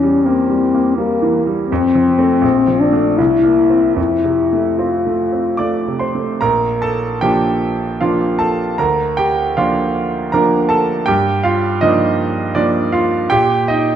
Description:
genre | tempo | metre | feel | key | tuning
classical, romantic duo for French horn and grand piano | 73-84 BPM | 3/4 | rubato | F major, Bb major from 6.4 s | A4 = 441 Hz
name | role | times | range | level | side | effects
warm French horn | melody | 0.0-6.0 s | Bb3 to F4 | -14 LUFS | left 4 dB | none
bright grand piano | accompaniment | 0.0-14.0 s | Bb1 to D6 | -15 LUFS | right 2 dB | none
room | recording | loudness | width
wet recital hall reverb, RT60 1.7 s | dark, warm production | -13 LUFS | side -9 dB against mid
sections
0.0-6.4 A section; 6.4-14.0 B section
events
none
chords
0.0 Edim; 1.7 F; 2.4 Bbmaj7; 3.2 C7; 4.0 F; 6.4 Bb; 8.8 Bb/D; 11.1 Gm7; 13.3 Gm/Bb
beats
0.25 0.97 | 1.70 2.43 3.19 | 3.97 4.78 5.58 | 6.40 7.21 8.01 | 8.80 9.57 10.33 | 11.08 11.82 12.56 | 13.31

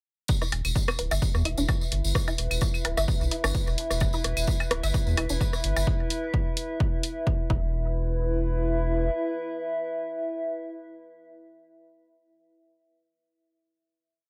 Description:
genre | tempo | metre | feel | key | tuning
minimal techno | 129 BPM | 4/4 | swing 54% on 16ths | unclear | A4 = 439 Hz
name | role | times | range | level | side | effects
electronic kick drum | drums | 0.3-7.6 s | none | -29 LUFS | equal | none
tambourine | percussion | 0.3-5.9 s | none | -37 LUFS | equal | none
warbly tape-like pad | texture | 1.1-12.2 s | E4 to E5 | -34 LUFS | equal | chorus, built-in reverb, sidechain pumping
resonant blip pluck | riff | 0.4-7.9 s | D4 to E5 | -36 LUFS | equal | phaser, sidechain pumping, dub echo
electronic rim click, percussion blips and claves | percussion | 0.4-5.9 s | none | -33 LUFS | equal | overdrive, delay
round analog bass | bass | 0.5-9.1 s | D1 to E2 | -30 LUFS | equal | sidechain pumping
electronic hi-hat | drums | 0.5-7.1 s | none | -33 LUFS | equal | none
room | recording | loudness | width
light reverb | none | -27 LUFS | mono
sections
0.3-7.7 groove; 7.7-11.5 final note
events
none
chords
0.3 E5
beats
| 0.29 0.76 1.22 1.69 | 2.15 2.62 3.08 3.55 | 4.01 4.48 4.94 5.41 | 5.87 6.34 6.80 7.27 | 7.73 8.20 8.66 9.13 | 9.59 10.06 10.52 10.99

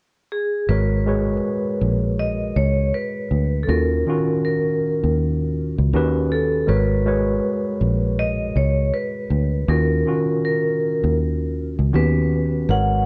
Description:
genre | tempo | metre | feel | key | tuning
lo-fi hip hop | 80 BPM | 4/4 | swing 60% on 16ths | G# dorian | A4 = 439 Hz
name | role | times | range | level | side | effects
vibraphone with medium hard mallets | melody | 0.3-13.1 s | G#4 to F#5 | -27 LUFS | equal | low-pass filter, analog delay
tine electric piano | accompaniment | 0.7-13.1 s | D#3 to C#5 | -25 LUFS | equal | cassette tape, low-pass filter
fingered electric bass | bass | 0.7-13.1 s | G#1 to D#2 | -23 LUFS | equal | none
room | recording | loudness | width
light reverb, small room ambience | cassette tape | -21 LUFS | mono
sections
0.7-13.1 A section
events
none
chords
0.0 N.C.; 0.7 G#m11; 3.7 D#m9; 5.9 D#7alt; 6.7 G#m11; 9.7 D#m9; 11.9 D#7alt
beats
| 0.68 1.43 2.18 2.93 | 3.68 4.43 5.18 5.93 | 6.68 7.43 8.18 8.93 | 9.68 10.43 11.18 11.93 | 12.68

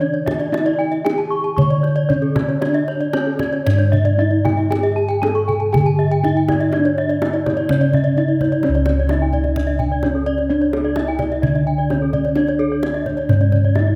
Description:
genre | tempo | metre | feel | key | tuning
Balinese gamelan | 115-129 BPM | 4/4 | straight | C# pelog | A4 = 439 Hz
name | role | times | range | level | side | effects
gamelan-type bronze metallophone | melody | 0.0-14.0 s | C#4 to C#5 | -24 LUFS | equal | none
gamelan-type bronze metallophone | arpeggios | 0.0-14.0 s | A4-40c to C#6 | -28 LUFS | equal | none
gamelan-type bossed gongs | bass | 0.0-14.0 s | C#2 to G#4-45c | -21 LUFS | equal | none
kendang | percussion | 0.0-13.9 s | none | -28 LUFS | equal | none
gamelan-type bronze metallophone | arpeggios | 0.1-13.6 s | A4-40c to C#6 | -27 LUFS | equal | none
room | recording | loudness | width
light reverb | close, detailed microphones | -18 LUFS | mono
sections
0.0-8.6 A section; 8.6-14.0 B section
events
none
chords
none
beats
0.00 | 0.52 1.04 1.57 2.09 | 2.61 3.13 3.65 4.17 | 4.70 5.21 5.72 6.23 | 6.72 7.21 7.69 8.17 | 8.64 9.10 9.57 10.04 | 10.50 10.97 11.43 11.90 | 12.37 12.83 13.30 13.76

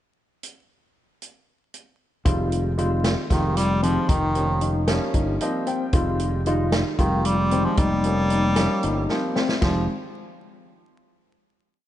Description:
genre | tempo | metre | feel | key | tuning
progressive instrumental, band music in an uneven meter | 228 BPM (eighths) | 7/8 | straight | F minor | A4 = 438 Hz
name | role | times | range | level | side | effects
vintage drum kit | drums | 0.4-9.7 s | hi-hat, kick drum, ride cymbal, snare drum | -25 LUFS | equal | none
warm baby grand piano | accompaniment | 2.3-9.9 s | Eb3 to G5 | -28 LUFS | right 1 dB | none
overdriven tine electric piano | arpeggios | 2.3-9.9 s | C4 to F4 | -29 LUFS | left 5 dB | fast tremolo
modern bright fingered electric bass | bass | 2.3-9.9 s | F1 to G1 | -24 LUFS | equal | none
bright bass clarinet | melody | 3.3-9.9 s | Eb3 to G3 | -24 LUFS | equal | none
vibraphone with soft mallets | second line | 7.0-9.9 s | G3 to C4 | -32 LUFS | right 1 dB | none
room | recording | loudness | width
moderate echo chamber reverb, RT60 2.2 s | vinyl crackle, nothing above 10.6 kHz | -20 LUFS | side -12 dB against mid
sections
0.4-2.3 pickup bar; 2.3-9.6 groove; 9.6-11.5 final chord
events
grand piano fill 5.1-5.9; drum fill 9.1-9.6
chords
0.4 N.C.; 2.3 Fm7; 4.1 Eb7/F; 5.9 Fm7; 7.8 Eb7/F; 9.6 Fm7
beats
| 0.43 0.69 0.95 1.21 1.48 1.74 2.00 | 2.26 2.52 2.79 3.05 3.31 3.57 3.83 | 4.10 4.36 4.62 4.88 5.15 5.41 5.67 | 5.94 6.20 6.46 6.73 6.99 7.25 7.51 | 7.78 8.04 8.30 8.57 8.83 9.09 9.36 | 9.62

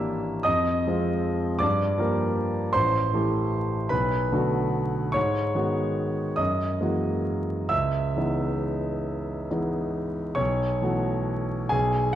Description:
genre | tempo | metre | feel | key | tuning
classical, impressionist solo piano | 43-54 BPM (dotted quarters) | 6/8 | rubato | unclear | A4 = 440 Hz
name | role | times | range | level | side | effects
clear concert grand piano | solo | 0.0-12.2 s | Ab1 to E6 | -23 LUFS | equal | none
room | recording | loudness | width
wet concert hall reverb, RT60 2.2 s | dark, warm production, vinyl crackle | -23 LUFS | side -11 dB against mid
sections
0.0-12.2 A section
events
none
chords
0.5 Fm7; 1.6 Gm7; 2.8 Am7; 3.9 Cbm7; 5.2 G#m7; 6.4 F#9; 7.7 C#m9; 10.4 B9sus4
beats
| 0.46 1.61 | 2.76 3.92 | 5.15 6.39 | 7.71 9.07 | 10.40 11.73

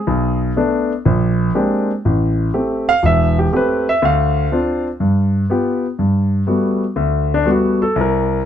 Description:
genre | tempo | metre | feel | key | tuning
jazz | 122 BPM | 4/4 | swing 68% on 8ths | unclear | A4 = 441 Hz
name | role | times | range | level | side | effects
warm grand piano | solo | 0.0-8.5 s | E1 to F5 | -14 LUFS | equal | none
room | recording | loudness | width
light reverb | close, detailed microphones | -14 LUFS | side -9 dB against mid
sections
0.0-6.0 A section; 6.0-8.5 B section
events
grand piano solo 6.0-8.5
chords
0.1 Bm7; 1.1 Bb13; 2.0 Am7; 4.0 Dm7; 5.0 G7; 6.0 Gmaj9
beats
| 0.07 0.56 1.05 1.55 | 2.04 2.53 3.03 3.52 | 4.01 4.51 5.00 5.49 | 5.99 6.48 6.97 7.46 | 7.96 8.45

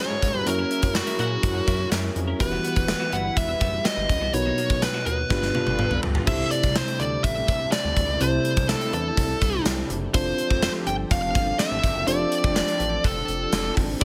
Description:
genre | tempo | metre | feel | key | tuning
1980s-style pop | 124 BPM | 4/4 | straight | C major from 6.3 s | A4 = 440 Hz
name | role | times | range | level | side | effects
fuzz lead guitar | melody | 0.0-14.0 s | F#4 to G5 | -28 LUFS | equal | distortion
FM electric piano with soft pad layer | accompaniment | 0.0-14.0 s | G2 to C#5 | -32 LUFS | equal | chorus
chorused pulse-width pad | sustained chords | 0.0-14.0 s | C3 to F#5 | -35 LUFS | equal | none
twelve-string electric guitar | riff | 0.1-6.3, 14.0 s | G3 to A#4 | -38 LUFS | equal | lush chorus
chorused synth bass | bass | 0.1-14.0 s | E1 to A#2 | -32 LUFS | equal | none
gated 80s drum kit | drums | 0.2-14.0 s | crash cymbal, hi-hat, kick drum, snare drum, tambourine, toms | -28 LUFS | equal | gated reverb
room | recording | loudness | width
light reverb, small room ambience | none | -24 LUFS | mono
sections
0.0-6.3 A section; 6.3-14.0 A section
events
drum fill 5.3-6.3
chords
0.0 F#7; 2.4 Emadd9; 4.3 Bmaj7; 5.3 G7; 6.3 C6; 10.1 F6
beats
| 0.47 0.95 1.43 1.92 | 2.40 2.89 3.37 3.85 | 4.34 4.82 5.30 5.79 | 6.27 6.76 7.24 7.72 | 8.21 8.69 9.18 9.66 | 10.14 10.63 11.11 11.60 | 12.08 12.56 13.05 13.53 | 14.02

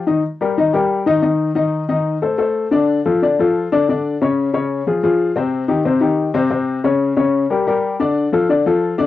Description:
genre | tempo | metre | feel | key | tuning
jazz | 182 BPM | 4/4 | straight | unclear | A4 = 439 Hz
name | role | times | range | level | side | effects
warm upright piano | solo | 0.0-9.1 s | C3 to Eb5 | -15 LUFS | left 3 dB | none
room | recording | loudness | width
moderate booth ambience, RT60 0.2 s | home recording on cassette | -15 LUFS | side -13 dB against mid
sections
0.2-9.1 A section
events
none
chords
0.2 Eb; 1.6 Cm69; 2.9 Dm; 4.2 Db; 5.5 Cm; 6.8 Gdim/Db; 8.2 Dm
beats
| 0.24 0.57 0.90 1.23 | 1.56 1.89 2.22 2.55 | 2.88 3.21 3.54 3.87 | 4.20 4.53 4.86 5.19 | 5.52 5.85 6.18 6.51 | 6.84 7.17 7.50 7.83 | 8.16 8.49 8.82

